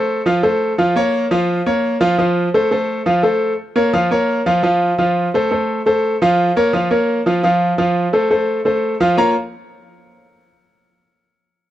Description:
latin; 172 BPM; 4/4; straight; Bb harmonic minor; A4 = 440 Hz
clear concert grand piano; solo; 0.0-9.3 s; F3 to Bb5; -14 LUFS; equal
studio reverb; dry, close 1970s-style studio recording; -14 LUFS; side -13 dB against mid
0.0-3.6 A section; 3.6-9.2 B section; 9.2-10.6 C section
0.0 F; 0.8 Bbm; 2.2 F; 3.6 Bbm; 5.0 F; 6.4 Bbm; 7.8 F; 9.2 Bbm
0.09 0.44 | 0.79 1.14 1.49 1.84 | 2.19 2.54 2.89 3.24 | 3.58 3.94 4.28 4.63 | 4.98 5.33 5.68 6.03 | 6.38 6.73 7.08 7.43 | 7.78 8.12 8.47 8.82 | 9.17

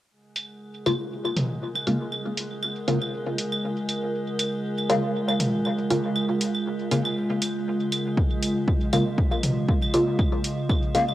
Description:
dub techno; 119 BPM; 4/4; swing 55% on 16ths; Bb minor; A4 = 440 Hz
warbly tape-like pad; sustained chords; 1.5-11.1 s; Db3 to Eb5; -30 LUFS; equal; chorus, built-in reverb, sidechain pumping, cassette tape
metallic inharmonic drone; texture; 0.5-11.1 s; Ab3 to Ab4; -31 LUFS; right 2 dB; chorus, built-in reverb, sidechain pumping, cassette tape
electronic hi-hat; drums; 0.4-11.1 s; -31 LUFS; equal; low-pass filter on hats, cassette tape
electronic claves and toms; percussion; 0.4-11.1 s; -30 LUFS; right 1 dB; overdrive, sidechain pumping on perc, cassette tape, sidechain pumping on toms, dub echo
filtered dub chord stab; stabs; 0.9-11.1 s; Db3 to F4; -26 LUFS; left 1 dB; phaser, sidechain pumping, cassette tape, dub echo
electronic kick drum; drums; 8.2-10.8 s; -23 LUFS; equal; cassette tape
moderate lush hall reverb, RT60 2.4 s; home recording on cassette; -23 LUFS; side -14 dB against mid
0.1-11.1 A section
filter sweep on ambient pad 0.1-11.1
0.1 Bbm7
| 0.11 0.61 1.11 1.62 | 2.12 2.63 3.13 3.64 | 4.14 4.64 5.15 5.65 | 6.16 6.66 7.17 7.67 | 8.17 8.68 9.18 9.69 | 10.19 10.70

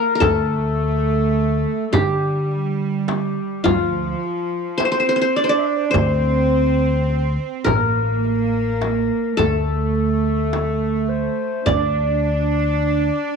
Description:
Turkish makam ensemble; 105 BPM (eighths); 10/8; straight; D makam ussak; A4 = 440 Hz
qanun; melody; 0.0-13.4 s; F4 to D5; -21 LUFS; left 1 dB
dark clarinet; second line; 0.0-13.4 s; F4 to E5-30c; -25 LUFS; left 12 dB
rich symphonic cello section; second line; 0.0-13.4 s; F3 to D4; -23 LUFS; right 10 dB; slapback echo
upright bass; bass; 0.2-13.1 s; A1 to D3; -22 LUFS; left 1 dB
darbuka; percussion; 0.2-12.7 s; -26 LUFS; left 6 dB
frame drum; percussion; 0.2-11.9 s; -24 LUFS; right 8 dB
light reverb, small room ambience; 1960s-style stereo with parts hard left and right; -17 LUFS; side -6 dB against mid
0.0-13.4 A section
| 0.22 0.79 1.36 1.94 2.51 3.08 3.66 4.23 4.80 5.37 | 5.95 6.52 7.09 7.66 8.23 8.80 9.38 9.95 10.52 11.09 | 11.66 12.23 12.81

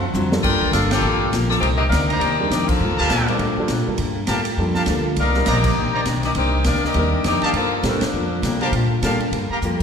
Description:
jazz, big band swing; 202 BPM; 4/4; swing 60% on 8ths; G minor; A4 = 444 Hz
picked acoustic archtop guitar; accompaniment; 0.0-9.8 s; C3 to A4; -26 LUFS; left 2 dB
upright bass; bass; 0.0-9.8 s; G1 to C3; -22 LUFS; equal
swinging big-band drum kit; drums; 0.1-9.8 s; crash cymbal, hi-hat, kick drum, ride cymbal, snare drum, toms; -26 LUFS; equal
dark baby grand piano; accompaniment; 0.3-9.2 s; G3 to C5; -27 LUFS; right 1 dB
warm saxophone section; melody; 0.4-8.6 s; F3 to G5; -22 LUFS; left 3 dB
clear trumpet section; stabs; 0.9-9.6 s; Eb4 to Bb5; -25 LUFS; right 1 dB
wet concert hall reverb, RT60 1.7 s; recorded in a church or concert hall; -17 LUFS; side -7 dB against mid
0.4-9.8 A section
drum fill 0.1, 9.6; band accent 0.9, 2.7, 5.6, 8.0
0.4 Gm9; 1.6 Cm9; 2.8 Gm9; 5.2 Cm9; 7.6 Gm9
0.14 | 0.43 0.73 1.03 1.32 | 1.62 1.92 2.21 2.51 | 2.81 3.10 3.40 3.69 | 3.99 4.29 4.58 4.88 | 5.18 5.47 5.77 6.07 | 6.37 6.66 6.96 7.26 | 7.55 7.85 8.15 8.44 | 8.74 9.04 9.34 9.63

